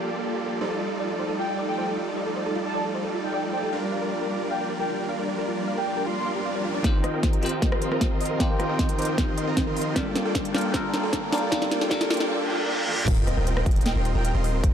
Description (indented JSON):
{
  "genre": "future bass",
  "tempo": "154 BPM",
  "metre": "4/4",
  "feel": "half-time",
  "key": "unclear",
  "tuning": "A4 = 438 Hz",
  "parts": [
    { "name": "bell-like tine electric piano", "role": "accompaniment", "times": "0.0-0.6, 6.8-13.1 s", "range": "Eb3 to C5", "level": "-29 LUFS", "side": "left 2 dB", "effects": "phaser, sidechain pumping, digital delay" },
    { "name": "airy breathy pad", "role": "sustained chords", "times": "0.0-14.7 s", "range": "F3 to A5", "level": "-36 LUFS", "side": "equal", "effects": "chorus, sidechain pumping" },
    { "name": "supersaw chords", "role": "riff", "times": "0.0-14.7 s", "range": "G3 to C6", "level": "-28 LUFS", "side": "right 2 dB", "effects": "vintage 12-bit sampler grit, sidechain pumping, low-pass filter, digital delay" },
    { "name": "thumb-piano-like synth pluck", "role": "arpeggios", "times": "0.6-14.7 s", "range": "F4 to F5", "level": "-34 LUFS", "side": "left 1 dB", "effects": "chorus, sidechain pumping, digital delay" },
    { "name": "airy dreamy lead", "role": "melody", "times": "1.4-6.5, 13.9-14.3 s", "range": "G5 to C6", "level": "-33 LUFS", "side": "equal", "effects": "chorus, sidechain pumping, dub echo" },
    { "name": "riser, reverse cymbal and sub drop", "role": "sound effects", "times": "4.8-14.6 s", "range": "none", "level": "-35 LUFS", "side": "equal", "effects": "none" },
    { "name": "electronic kick drum", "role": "drums", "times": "6.8-14.7 s", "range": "none", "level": "-25 LUFS", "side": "equal", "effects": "none" },
    { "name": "trap drum kit", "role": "drums", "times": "6.8-14.7 s", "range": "crash cymbal, hi-hat, rim click, snare drum, toms", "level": "-28 LUFS", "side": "equal", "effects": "overdrive" },
    { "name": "long sustained 808-style bass", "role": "bass", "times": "13.1-14.7 s", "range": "Eb1", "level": "-25 LUFS", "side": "equal", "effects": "sidechain pumping" }
  ],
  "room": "light reverb",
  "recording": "dark, warm production, high-pass filter",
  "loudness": "-23 LUFS",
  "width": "side -9 dB against mid",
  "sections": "0.0-6.8 A section; 6.8-13.1 B section; 13.1-14.7 C section",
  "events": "riser 4.8-6.8; build-up 6.8-13.1; drum fill 6.8-12.3, 12.9; filter sweep on supersaw synth 6.8-13.1; filter sweep 6.8-13.1; reverse cymbal 12.3-13.1; drop 13.1-14.7; impact 13.1-14.6",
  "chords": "0.0 Gm9; 0.6 F13; 3.7 Bb6; 6.8 Eb69; 10.0 Gm9; 13.1 Eb69"
}